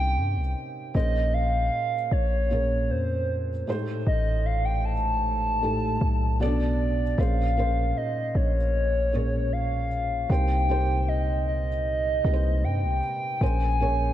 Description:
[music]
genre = contemporary R&B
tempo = 77 BPM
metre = 4/4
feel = straight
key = Bb dorian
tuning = A4 = 440 Hz
[part]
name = hollow clarinet-like synth lead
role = melody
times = 0.0-14.1 s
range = C5 to A5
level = -28 LUFS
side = equal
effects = chorus, tape echo
[part]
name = felt-muted upright piano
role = accompaniment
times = 0.0-14.1 s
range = A2 to D5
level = -30 LUFS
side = right 1 dB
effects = none
[part]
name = warm 808-style bass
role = bass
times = 0.0-14.1 s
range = A1 to G2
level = -25 LUFS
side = equal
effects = none
[sound]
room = light reverb, studio reverb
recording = none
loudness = -23 LUFS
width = side -12 dB against mid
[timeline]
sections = 0.0-7.2 A section; 7.2-14.1 B section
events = none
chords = 0.0 Cm7; 0.9 Bbm9; 3.7 Am9b5; 6.4 Bm7; 7.2 Bbm9; 10.3 Cm7; 13.4 Bbm9

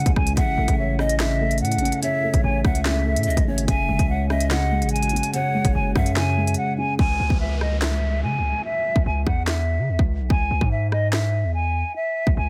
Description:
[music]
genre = hip hop, drill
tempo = 145 BPM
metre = 4/4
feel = half-time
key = C# minor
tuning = A4 = 440 Hz
[part]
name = concert flute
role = melody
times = 0.0-12.5 s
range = D#5 to G#5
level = -28 LUFS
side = equal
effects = low-pass filter
[part]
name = felt-muted upright piano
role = accompaniment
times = 0.0-7.0 s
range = C#3 to C#5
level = -28 LUFS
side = equal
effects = low-pass filter
[part]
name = glassy FM pad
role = sustained chords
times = 0.0-7.0 s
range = C#3 to A4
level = -38 LUFS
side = equal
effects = none
[part]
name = hard-hitting 808-style bass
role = bass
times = 0.0-12.5 s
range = F#1 to C#3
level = -25 LUFS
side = equal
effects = none
[part]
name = drill drum kit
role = drums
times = 0.1-12.4 s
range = handclaps, hi-hat, kick drum, rim click, snare drum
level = -26 LUFS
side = equal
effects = overdrive
[part]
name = breathy bright large pan pipes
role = second line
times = 0.4-6.5 s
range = C#5 to E5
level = -36 LUFS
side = equal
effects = tape echo
[part]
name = downlifter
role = sound effects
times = 7.0-10.3 s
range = none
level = -37 LUFS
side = equal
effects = none
[sound]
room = little or no reverb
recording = dense, heavily limited modern master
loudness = -22 LUFS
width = mono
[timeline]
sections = 0.0-7.0 A section; 7.0-12.5 B section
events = break 6.6-7.0; hi-hats muted 7.0-12.5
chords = 0.4 A; 3.7 F#sus2; 7.0 C#m

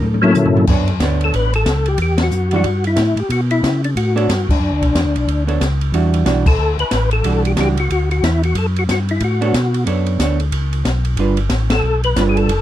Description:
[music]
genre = soul jazz organ trio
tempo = 183 BPM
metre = 4/4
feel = swing 61% on 8ths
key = B minor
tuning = A4 = 438 Hz
[part]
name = hollow-body jazz guitar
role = accompaniment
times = 0.0-12.5 s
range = E3 to C#5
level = -19 LUFS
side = right 5 dB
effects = none
[part]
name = mellow tonewheel organ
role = bass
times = 0.0-12.6 s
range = F#1 to C#3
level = -17 LUFS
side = equal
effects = chorus vibrato, slow rotary speaker
[part]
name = open jazz drum kit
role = drums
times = 0.0-12.6 s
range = crash cymbal, hi-hat, kick drum, ride cymbal, snare drum, toms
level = -21 LUFS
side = equal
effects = none
[part]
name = percussive tonewheel organ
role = melody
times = 0.2-12.6 s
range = F#3 to B4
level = -18 LUFS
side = left 3 dB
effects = slow rotary speaker, chorus vibrato
[sound]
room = little or no reverb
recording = dry, close 1970s-style studio recording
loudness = -14 LUFS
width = side -12 dB against mid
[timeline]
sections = 0.7-12.6 A section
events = drum fill 0.0-0.7; band accent 2.2, 4.5, 6.4, 11.7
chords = 0.0 F#7#9; 0.7 Bm9; 2.0 Emadd9; 3.3 Bm9; 5.9 Em9; 8.6 Bm9; 11.2 G7

